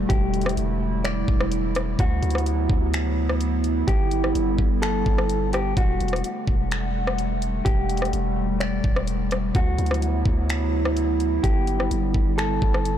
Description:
hip hop, atmospheric cloud-rap; 127 BPM; 4/4; half-time; E minor; A4 = 436 Hz
warbly tape-like pad; sustained chords; 0.0-13.0 s; C3 to F#5; -26 LUFS; right 1 dB; chorus, built-in reverb, sidechain pumping
long sustained 808-style bass; bass; 0.0-13.0 s; E1 to D2; -25 LUFS; equal
mellow electric guitar; melody; 0.1-13.0 s; F#4 to D5; -30 LUFS; left 1 dB; digital delay
trap drum kit; drums; 0.1-13.0 s; finger snaps, hi-hat, kick drum, rim click; -25 LUFS; equal; soft clipping on snare
digital ambience; blown-out, overdriven recording, overdrive; -20 LUFS; side -10 dB against mid
0.0-13.0 A section
0.0 Em11; 2.0 D13; 3.9 G6; 5.8 Em11; 9.5 D13; 11.4 G6

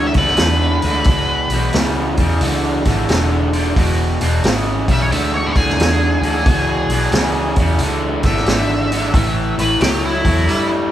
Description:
blues rock power trio and southern rock; 89 BPM; 4/4; swing 66% on 8ths; E mixolydian; A4 = 439 Hz
octave-fuzz lead guitar; melody; 0.0-10.7 s; E4 to E5; -20 LUFS; equal; wah, distortion
tonewheel organ; sustained chords; 0.0-10.9 s; E4 to G5; -29 LUFS; right 3 dB; stopped rotary speaker
raw garage guitar; riff; 0.0-10.9 s; E2 to G3; -19 LUFS; equal; overdrive
vintage muted fingered electric bass; bass; 0.0-10.9 s; E1 to G2; -20 LUFS; equal
vintage drum kit; drums; 0.1-10.7 s; hi-hat, kick drum, snare drum; -19 LUFS; equal
moderate large studio reverb, RT60 1.1 s; band playing live in one room; -14 LUFS; side -12 dB against mid
0.0-10.9 A section
lead electric guitar solo 0.0-10.9
0.0 E7; 9.1 A7

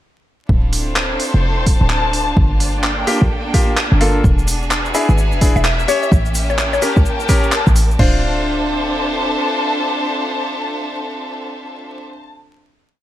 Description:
UK garage, two-step garage; 128 BPM; 4/4; swing 62% on 16ths; D minor; A4 = 443 Hz
bright studio violin section; sustained chords; 0.5-12.0 s; Bb3 to E5; -26 LUFS; right 1 dB; sidechain pumping
short 808-style bass; bass; 0.5-9.4 s; D1 to C#2; -17 LUFS; equal
electronic kick drum; drums; 0.5-8.1 s; -16 LUFS; equal
warm studio string section; texture; 0.5-12.2 s; Bb3 to A5; -22 LUFS; left 1 dB; sidechain pumping
garage drum kit; drums; 0.7-8.1 s; crash cymbal, handclaps, hi-hat; -21 LUFS; right 1 dB
clear concert grand piano; stabs; 3.1-12.0 s; Bb3 to C#5; -21 LUFS; left 1 dB; digital delay
tube shaker; percussion; 4.2-8.0 s; -30 LUFS; left 4 dB
mallet-like synth pluck; melody; 4.9-7.2 s; C#5 to E5; -21 LUFS; left 4 dB; chorus, phaser
light reverb; vinyl crackle; -14 LUFS; side -13 dB against mid
0.5-8.0 groove; 8.0-11.7 final chord
0.5 Dm7; 2.4 Gm7; 4.2 E7; 5.9 A7b9; 8.0 Dm7

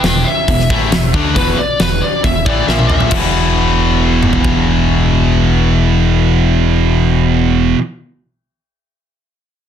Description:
hard rock; 136 BPM; 4/4; straight; A4 = 441 Hz
lead guitar through a small cranked amp; melody; 0.0-3.1 s; B4 to G5; -18 LUFS; left 1 dB; overdrive, digital delay
growling fingered electric bass; bass; 0.0-7.7 s; E1 to D2; -16 LUFS; equal; overdrive
huge arena drum kit; drums; 0.0-4.5 s; crash cymbal, hi-hat, kick drum, snare drum, toms; -17 LUFS; equal
distorted electric guitar; riff; 0.1-7.8 s; E2 to D4; -17 LUFS; left 8 dB; overdrive
scooped high-gain guitar; riff; 0.1-7.8 s; E2 to D4; -16 LUFS; right 10 dB; distortion
moderate small room reverb, RT60 0.6 s; dense, heavily limited modern master; -11 LUFS; side -9 dB against mid
0.0-3.1 A section; 3.1-6.6 B section
lead electric guitar solo 0.0-3.1; drum fill 2.7-3.1
0.0 E5; 2.7 A#5; 3.1 E5

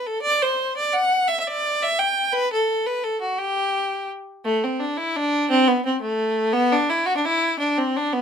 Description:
celtic folk; 114 BPM (dotted quarters); 6/8; straight; A4 = 440 Hz
rich fiddle; solo; 0.0-8.2 s; A3 to G5; -20 LUFS; equal
moderate small room ambience, RT60 0.5 s; minimal, uncompressed stereo recording; -19 LUFS; side -7 dB against mid
0.0-4.4 A section; 4.4-8.2 B section

